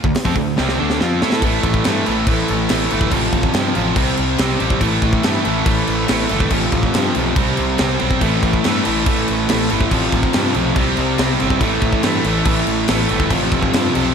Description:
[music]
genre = hard rock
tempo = 141 BPM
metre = 4/4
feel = straight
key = A minor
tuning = A4 = 440 Hz
[part]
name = biting overdriven guitar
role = riff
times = 0.0-14.1 s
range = F2 to A4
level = -21 LUFS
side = left 9 dB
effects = slapback echo
[part]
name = cranked stack guitar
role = riff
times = 0.0-14.1 s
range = F2 to A4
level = -20 LUFS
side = right 10 dB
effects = overdrive, slapback echo
[part]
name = sludgy distorted guitar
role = riff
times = 0.0-1.4, 8.2-14.1 s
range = F2 to A4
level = -25 LUFS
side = equal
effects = none
[part]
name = fuzz picked electric bass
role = bass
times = 0.0-14.1 s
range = G1 to A2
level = -22 LUFS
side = equal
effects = overdrive
[part]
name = tight metal drum kit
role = drums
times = 0.0-14.0 s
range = crash cymbal, hi-hat, kick drum, snare drum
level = -20 LUFS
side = equal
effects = none
[sound]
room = moderate lush hall reverb, RT60 1.9 s, small room ambience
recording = big arena sound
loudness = -14 LUFS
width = side -7 dB against mid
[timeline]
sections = 0.0-1.4 A section; 1.4-14.1 B section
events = drum fill 0.6-1.4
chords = 0.0 D5; 1.4 A5; 3.1 F/A; 4.0 C5; 4.8 A5; 6.5 F/A; 7.4 C5; 8.2 A5; 9.9 F/A; 10.8 C5; 11.6 A5; 13.3 F/A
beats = 0.15 0.58 1.00 | 1.43 1.85 2.27 2.70 | 3.12 3.55 3.97 4.39 | 4.82 5.24 5.67 6.09 | 6.52 6.94 7.37 7.79 | 8.22 8.64 9.07 9.49 | 9.92 10.34 10.77 11.19 | 11.62 12.04 12.46 12.89 | 13.31 13.74

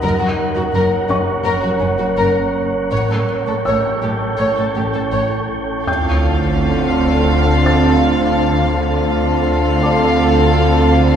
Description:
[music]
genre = cinematic, suspense film score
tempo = 84 BPM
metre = 4/4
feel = straight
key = D minor from 5.9 s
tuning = A4 = 441 Hz
[part]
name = warm studio violin section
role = melody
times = 0.0-11.2 s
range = C#4 to F5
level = -22 LUFS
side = left 2 dB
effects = none
[part]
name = wind-like tuned noise texture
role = sustained chords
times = 0.0-11.2 s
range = A4 to G5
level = -21 LUFS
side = equal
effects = built-in reverb
[part]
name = warm studio cello section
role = bass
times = 0.0-11.2 s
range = F#2 to D3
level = -23 LUFS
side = right 1 dB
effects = none
[part]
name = warm studio double bass section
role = bass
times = 0.0-11.2 s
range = F#1 to D2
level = -20 LUFS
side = right 2 dB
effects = none
[part]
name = swarming drone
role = drone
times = 0.0-11.2 s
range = F#1 to D2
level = -24 LUFS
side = equal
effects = built-in reverb
[part]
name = felt-muted upright piano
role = texture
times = 0.0-11.2 s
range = C#5 to A6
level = -28 LUFS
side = left 1 dB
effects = none
[part]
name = warm studio violin section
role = second line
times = 5.9-11.2 s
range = A4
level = -21 LUFS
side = left 1 dB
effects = none
[part]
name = dark studio viola section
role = accompaniment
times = 5.9-11.2 s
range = C4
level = -21 LUFS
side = right 4 dB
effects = none
[part]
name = mellow French horn section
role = sustained chords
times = 5.9-11.2 s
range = C4 to F4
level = -22 LUFS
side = left 1 dB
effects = none
[part]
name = sub drop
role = sound effects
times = 5.9-8.7 s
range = none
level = -23 LUFS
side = equal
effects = none
[sound]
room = wet scoring stage reverb, RT60 1.5 s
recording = heard from further back in the room, nothing above 10.5 kHz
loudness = -14 LUFS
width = side -8 dB against mid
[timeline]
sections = 0.0-5.9 A section; 5.9-11.2 B section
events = impact 5.9-8.8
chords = 0.0 F#; 2.9 A7; 5.9 Dm7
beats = | 0.03 0.74 1.46 2.18 | 2.92 3.66 4.40 5.14 | 5.88 6.60 7.32 8.04 | 8.75 9.47 10.19 10.90

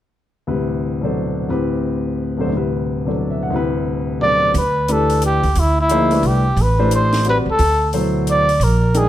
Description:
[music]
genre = modal jazz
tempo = 177 BPM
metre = 3/4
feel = swing 63% on 8ths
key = D mixolydian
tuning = A4 = 440 Hz
[part]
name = warm concert grand piano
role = accompaniment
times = 0.5-9.1 s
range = D2 to G5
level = -20 LUFS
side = left 2 dB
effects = none
[part]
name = breathy trumpet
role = melody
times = 4.2-9.1 s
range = E4 to D5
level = -17 LUFS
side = equal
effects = none
[part]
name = upright bass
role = bass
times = 4.5-9.1 s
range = A1 to D2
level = -17 LUFS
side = right 1 dB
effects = none
[part]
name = compact cocktail drum kit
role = drums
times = 4.5-9.0 s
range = hi-hat, snare drum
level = -30 LUFS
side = left 1 dB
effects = none
[sound]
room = light reverb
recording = none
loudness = -15 LUFS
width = side -12 dB against mid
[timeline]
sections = 0.5-4.5 A section; 4.5-9.1 B section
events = none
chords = 0.5 D13sus4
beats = | 0.47 0.81 1.15 | 1.49 1.83 2.17 | 2.51 2.85 3.19 | 3.52 3.86 4.20 | 4.54 4.88 5.22 | 5.56 5.89 6.23 | 6.57 6.91 7.25 | 7.59 7.93 8.27 | 8.61 8.94

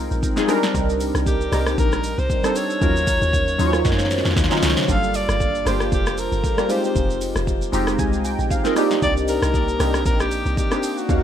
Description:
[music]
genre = amapiano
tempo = 116 BPM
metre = 4/4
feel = swing 55% on 16ths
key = unclear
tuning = A4 = 440 Hz
[part]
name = warm analog keys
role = accompaniment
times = 0.0-11.2 s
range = Gb3 to Bb5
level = -22 LUFS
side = equal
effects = chorus, phaser
[part]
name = deep log drum bass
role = bass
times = 0.0-11.2 s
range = F1 to Gb2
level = -24 LUFS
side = equal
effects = none
[part]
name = deep house drum kit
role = drums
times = 0.1-11.2 s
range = hi-hat, kick drum, rim click, shaker, snare drum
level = -23 LUFS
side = equal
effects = none
[part]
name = breathy alto saxophone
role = melody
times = 1.3-11.2 s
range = F#4 to F5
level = -25 LUFS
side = equal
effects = ping-pong delay
[sound]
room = light reverb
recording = rough home demo mix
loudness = -18 LUFS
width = side -10 dB against mid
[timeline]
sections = 0.0-11.2 A section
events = drum fill 3.8-4.9; synth keys fill 7.5-9.0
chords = 0.5 Cm9; 2.8 Ebm9; 4.9 Gm9; 6.7 Fm9; 8.8 Cm9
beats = 0.23 | 0.75 1.26 1.78 2.30 | 2.81 3.33 3.85 4.37 | 4.88 5.40 5.92 6.43 | 6.95 7.47 7.99 8.50 | 9.02 9.54 10.06 10.57 | 11.09

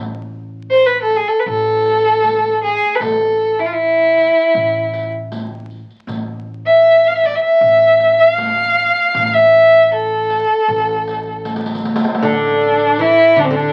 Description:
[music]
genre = Arabic maqam ensemble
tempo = 78 BPM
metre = 4/4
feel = straight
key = unclear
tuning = A4 = 441 Hz
[part]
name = upright bass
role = bass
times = 0.0-13.5 s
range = A1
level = -33 LUFS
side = equal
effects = none
[part]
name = rich violin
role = melody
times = 0.7-13.7 s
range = C4 to F5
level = -14 LUFS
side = equal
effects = none
[part]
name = riq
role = percussion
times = 0.9-13.6 s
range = none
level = -26 LUFS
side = equal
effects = none
[part]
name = oud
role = second line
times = 12.2-13.7 s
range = D3 to E3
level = -19 LUFS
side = equal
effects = none
[part]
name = bright double bass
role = drone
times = 12.2-13.7 s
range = A2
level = -37 LUFS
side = equal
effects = none
[sound]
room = wet small room ambience, RT60 0.5 s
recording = very old 78 rpm record, vinyl crackle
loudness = -14 LUFS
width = mono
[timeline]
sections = 0.0-12.2 A section; 12.2-13.7 B section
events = drum fill 11.5-12.2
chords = none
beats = 0.70 1.47 2.24 | 3.01 3.78 4.55 5.31 | 6.08 6.85 7.62 8.39 | 9.15 9.92 10.69 11.46 | 12.23 12.99

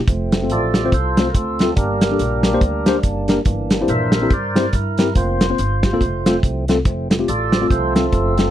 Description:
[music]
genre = uptempo gospel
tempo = 142 BPM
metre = 4/4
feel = swing 60% on 8ths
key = unclear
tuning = A4 = 440 Hz
[part]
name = tonewheel organ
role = sustained chords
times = 0.1-8.5 s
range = E3 to E5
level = -21 LUFS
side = right 2 dB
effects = slow rotary speaker
[part]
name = upright bass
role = bass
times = 0.1-8.5 s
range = F1 to G2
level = -23 LUFS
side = equal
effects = none
[part]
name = warm soul drum kit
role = drums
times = 0.1-8.5 s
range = hi-hat, kick drum, snare drum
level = -18 LUFS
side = equal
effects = none
[part]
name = tine electric piano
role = accompaniment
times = 0.3-8.5 s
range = G2 to C5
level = -20 LUFS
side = left 3 dB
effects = analog chorus
[sound]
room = light reverb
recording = dry, close 1970s-style studio recording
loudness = -15 LUFS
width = side -12 dB against mid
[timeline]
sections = 0.0-8.5 A section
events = tonewheel organ solo 0.0-8.5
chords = 0.1 F; 1.8 Gm; 3.5 C7/G; 5.2 Fsus4; 6.0 F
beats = | 0.07 0.49 0.92 1.34 | 1.76 2.19 2.61 3.04 | 3.46 3.88 4.31 4.73 | 5.16 5.58 6.00 6.43 | 6.85 7.28 7.70 8.12

